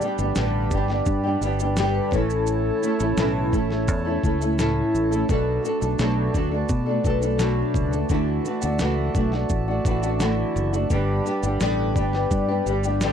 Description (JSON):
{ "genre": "acoustic pop", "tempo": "85 BPM", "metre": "4/4", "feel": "straight", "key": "D major", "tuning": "A4 = 440 Hz", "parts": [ { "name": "nylon-string guitar", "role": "accompaniment", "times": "0.0-13.1 s", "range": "G2 to A4", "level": "-24 LUFS", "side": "equal", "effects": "double-tracked left and right" }, { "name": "hand-pumped harmonium", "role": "sustained chords", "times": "0.0-13.1 s", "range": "E4 to B5", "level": "-32 LUFS", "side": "right 2 dB", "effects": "none" }, { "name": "dusty soul sampler-style drum kit", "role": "drums", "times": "0.0-13.1 s", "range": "kick drum, shaker, snare drum", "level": "-26 LUFS", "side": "equal", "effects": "overdrive" }, { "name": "fingered electric bass", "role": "bass", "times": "0.2-13.1 s", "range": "F#1 to B2", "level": "-25 LUFS", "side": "equal", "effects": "none" }, { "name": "vibraphone with soft mallets", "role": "second line", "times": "1.8-13.1 s", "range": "D4 to D5", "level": "-28 LUFS", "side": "left 12 dB", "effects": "none" } ], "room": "little or no reverb", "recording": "dry, close 1970s-style studio recording", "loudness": "-20 LUFS", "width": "side -8 dB against mid", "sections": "0.0-13.1 A section", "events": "none", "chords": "0.0 G; 2.1 A; 5.3 Bm7; 8.1 Dadd9; 10.9 G", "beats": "0.37 1.07 1.77 | 2.48 3.18 3.88 4.58 | 5.29 5.99 6.69 7.39 | 8.10 8.80 9.50 10.20 | 10.90 11.61 12.31 13.01" }